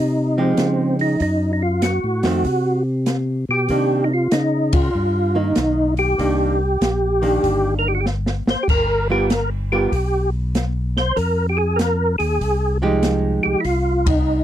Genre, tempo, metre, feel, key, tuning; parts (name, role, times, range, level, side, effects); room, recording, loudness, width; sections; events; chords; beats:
soul jazz organ trio; 96 BPM; 4/4; swing 66% on 8ths; C minor; A4 = 440 Hz
percussive tonewheel organ; melody; 0.0-14.4 s; C4 to C5; -20 LUFS; equal; slow rotary speaker, chorus vibrato
tonewheel organ; bass; 0.0-14.4 s; G1 to Db3; -21 LUFS; equal; slow rotary speaker
hollow-body jazz guitar; accompaniment; 0.4-13.6 s; D#3 to A#4; -22 LUFS; right 2 dB
open jazz drum kit; drums; 0.6-14.2 s; crash cymbal, hi-hat, kick drum, ride cymbal, snare drum; -23 LUFS; equal
little or no reverb; dry, close 1970s-style studio recording; -17 LUFS; side -11 dB against mid
0.0-14.4 A section
band accent 4.6-4.9, 14.0-14.3; drum fill 8.1-8.7
0.0 Fm9; 1.2 F#dim7; 3.7 Cm9; 8.7 G7#9; 11.2 Fm9; 13.7 Cm
0.59 | 1.21 1.83 2.46 3.08 | 3.70 4.32 4.95 5.57 | 6.19 6.81 7.43 8.06 | 8.68 9.30 9.92 10.54 | 11.17 11.79 12.41 13.03 | 13.66 14.28